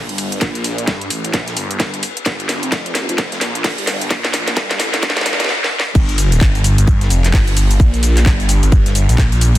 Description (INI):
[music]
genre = bass house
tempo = 130 BPM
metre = 4/4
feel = swing 61% on 16ths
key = unclear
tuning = A4 = 441 Hz
[part]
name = phased detuned saw bass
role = bass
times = 0.0-9.6 s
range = F1 to G2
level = -16 LUFS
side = equal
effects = phaser, overdrive, sidechain pumping, high-pass filter
[part]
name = garage drum kit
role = drums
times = 0.1-9.6 s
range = cabasa, crash cymbal, handclaps, hi-hat, snare drum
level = -19 LUFS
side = equal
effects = high-pass filter on hats, high-pass filter on snare, high-pass filter on cymbals, high-pass filter on perc, high-pass filter on room
[part]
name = modern studio drum kit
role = drums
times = 0.2-9.5 s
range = hi-hat, ride cymbal, snare drum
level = -28 LUFS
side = left 3 dB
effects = sidechain pumping on cymbals, high-pass filter on cymbals, sidechain pumping on hats, high-pass filter on hats, high-pass filter on snare, high-pass filter on room
[part]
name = electronic kick drum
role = drums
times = 0.4-9.3 s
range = none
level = -14 LUFS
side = equal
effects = high-pass filter on kick, high-pass filter on room
[sound]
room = light reverb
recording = dense, heavily limited modern master, high-pass filter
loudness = -13 LUFS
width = side -15 dB against mid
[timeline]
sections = 0.0-6.0 A section; 6.0-9.6 B section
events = build-up 0.0-6.0; drum fill 0.0-5.5, 5.5-6.0; drop 6.0-9.6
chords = none